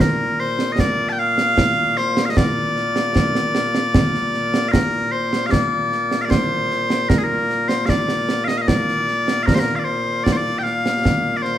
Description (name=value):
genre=scottish traditional, Scottish pipe music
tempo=76 BPM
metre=3/4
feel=straight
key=Bb major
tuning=A4 = 440 Hz
part: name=loud bright bagpipes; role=melody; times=0.0-11.6 s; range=Bb2 to A5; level=-19 LUFS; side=left 1 dB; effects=none
part: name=concert snare drum and concert bass drum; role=drums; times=0.0-11.5 s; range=none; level=-20 LUFS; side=right 1 dB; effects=none
room=moderate large studio reverb, RT60 1.2 s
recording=band playing live in one room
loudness=-17 LUFS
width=side -11 dB against mid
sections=0.0-11.6 A section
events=none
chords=none